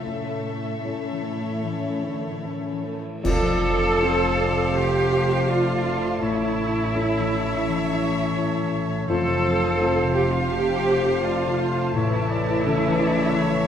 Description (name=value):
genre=cinematic, emotional film score for orchestra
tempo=73-86 BPM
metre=4/4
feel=rubato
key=F major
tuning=A4 = 444 Hz
part: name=warm studio violin section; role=melody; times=0.0-13.7 s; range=E5 to A5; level=-36 LUFS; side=left 3 dB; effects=none
part: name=clear studio violin section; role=second line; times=0.0-13.7 s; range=A4 to F5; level=-35 LUFS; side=left 2 dB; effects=none
part: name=felt-muted upright piano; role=accompaniment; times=0.0-13.7 s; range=F2 to A4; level=-29 LUFS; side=left 2 dB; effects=none
part: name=rich studio viola section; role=accompaniment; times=0.0-13.7 s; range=E3 to A4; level=-29 LUFS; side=right 1 dB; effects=none
part: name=mellow French horn section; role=sustained chords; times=0.0-13.7 s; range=C#3 to C#4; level=-30 LUFS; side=left 3 dB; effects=none
part: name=concert harp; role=arpeggios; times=0.0-13.7 s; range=F2 to A4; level=-30 LUFS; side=left 4 dB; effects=none
part: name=clear studio cello section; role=bass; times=0.0-13.7 s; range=A2 to A4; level=-27 LUFS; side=right 2 dB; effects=none
part: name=cymbal swell, clash cymbals and concert bass drum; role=percussion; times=0.0-4.7 s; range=none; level=-31 LUFS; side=right 1 dB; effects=none
part: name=dark clarinet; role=second line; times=3.2-13.7 s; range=C5 to C#5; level=-32 LUFS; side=left 2 dB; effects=none
part: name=silver concert flute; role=second line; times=3.2-13.7 s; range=E5 to F5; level=-34 LUFS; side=right 1 dB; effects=none
part: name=clear oboe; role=second line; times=3.3-13.7 s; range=C5 to E5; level=-32 LUFS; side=right 2 dB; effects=none
part: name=warm studio double bass section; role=bass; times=3.3-13.7 s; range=F1 to A1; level=-30 LUFS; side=right 4 dB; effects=none
room=wet scoring stage reverb, RT60 1.7 s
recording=none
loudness=-20 LUFS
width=side -9 dB against mid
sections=0.0-3.2 A section; 3.2-13.7 A section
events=band accent 3.2-4.0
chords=0.0 A; 3.2 F; 6.2 A; 9.1 F; 11.9 A